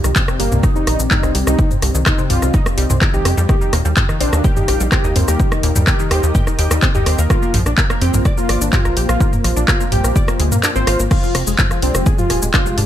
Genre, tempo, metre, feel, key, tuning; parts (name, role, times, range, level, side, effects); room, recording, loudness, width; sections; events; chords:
melodic techno; 126 BPM; 4/4; straight; A4 = 440 Hz
dark analog pad; sustained chords; 0.0-12.9 s; Ab3 to F5; -26 LUFS; left 2 dB; chorus, sidechain pumping
tight sequenced synth; arpeggios; 0.0-12.9 s; G2 to D6; -24 LUFS; equal; chorus, sidechain pumping, ping-pong delay
tight sequencer bass; bass; 0.0-12.9 s; Eb1 to Bb2; -17 LUFS; equal; sidechain pumping
house drum kit; drums; 0.0-12.9 s; crash cymbal, handclaps, hi-hat, rim click, shaker, toms; -19 LUFS; equal; small room ambience, sidechain pumping on cymbals, sidechain pumping on perc, sidechain pumping on hats, sidechain pumping on toms
electronic kick drum; drums; 0.2-12.6 s; -17 LUFS; equal; small room ambience
wide unison lead; melody; 0.4-12.8 s; Bb3 to C5; -23 LUFS; equal; sidechain pumping, dub echo
digital ambience; -13 LUFS; side -11 dB against mid
0.0-12.9 A section
kick drops out 10.6-11.1
0.0 Cmadd9; 3.5 Eb; 7.3 Bb7; 11.1 Fmadd9